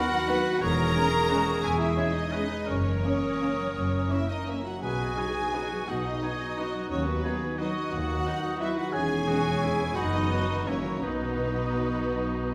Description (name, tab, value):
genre	classical, orchestral ballroom waltz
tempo	155-190 BPM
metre	3/4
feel	rubato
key	B major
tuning	A4 = 440 Hz
part	rich studio violin section	melody	0.0-12.5 s	B4 to A#5	-35 LUFS	equal	none
part	bright clarinet	second line	0.0-12.5 s	F#4 to A#4	-38 LUFS	equal	none
part	clear oboe	second line	0.0-12.5 s	D#4 to C#5	-39 LUFS	equal	none
part	silver concert flute	second line	0.0-12.5 s	A#5 to D#6	-41 LUFS	equal	none
part	rich studio viola section	accompaniment	0.0-12.5 s	B3 to A#4	-35 LUFS	equal	none
part	dark French horn section	sustained chords	0.0-12.5 s	F#3 to D#4	-38 LUFS	equal	none
part	concert harp	arpeggios	0.0-12.5 s	F#2 to C#5	-38 LUFS	equal	none
part	rich studio violin section	second line	0.3-12.5 s	G#3 to D#4	-39 LUFS	equal	none
part	rich studio double bass section	bass	0.6-12.5 s	E1 to D#2	-37 LUFS	equal	none
part	warm studio cello section	bass	0.6-12.5 s	D#2 to B2	-37 LUFS	equal	none
room	wet recital hall reverb, RT60 1.6 s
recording	recorded in a church or concert hall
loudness	-28 LUFS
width	mono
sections	0.0-12.5 A section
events	none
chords	0.0 B/D#; 0.6 C#m/E; 2.7 F#; 4.8 B; 6.9 B/D#; 8.9 C#m/E; 10.0 B/F#; 10.7 F#; 11.0 B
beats	0.28 | 0.62 0.95 1.30 | 1.63 1.97 2.33 | 2.67 3.03 3.40 | 3.75 4.11 4.48 | 4.83 5.17 5.54 | 5.88 6.22 6.57 | 6.90 7.24 7.58 | 7.92 8.26 8.60 | 8.93 9.27 9.63 | 9.96 10.29 10.66 | 11.01 11.38 11.76 | 12.11 12.47